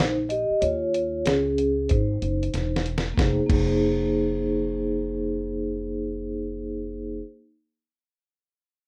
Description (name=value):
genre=hip hop, jazz-hop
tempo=94 BPM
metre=4/4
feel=swing 64% on 16ths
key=F minor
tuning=A4 = 440 Hz
part: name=vibraphone with soft mallets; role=accompaniment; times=0.0-7.2 s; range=Bb3 to Eb5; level=-27 LUFS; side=equal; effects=none
part: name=upright bass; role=bass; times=0.0-7.2 s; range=E1 to Eb2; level=-32 LUFS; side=equal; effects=none
part: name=lo-fi sampler-style drum kit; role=drums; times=0.0-3.7 s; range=crash cymbal, hi-hat, kick drum, snare drum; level=-28 LUFS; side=equal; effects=none
room=moderate studio reverb, RT60 0.5 s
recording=rough home demo mix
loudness=-25 LUFS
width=mono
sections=0.0-3.2 A section; 3.2-5.7 B section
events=vibraphone solo 0.0-3.2; drum fill 2.5-3.2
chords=0.0 F7sus2 (rootless); 0.6 Eb9sus4; 1.9 Ab7; 3.2 Fm7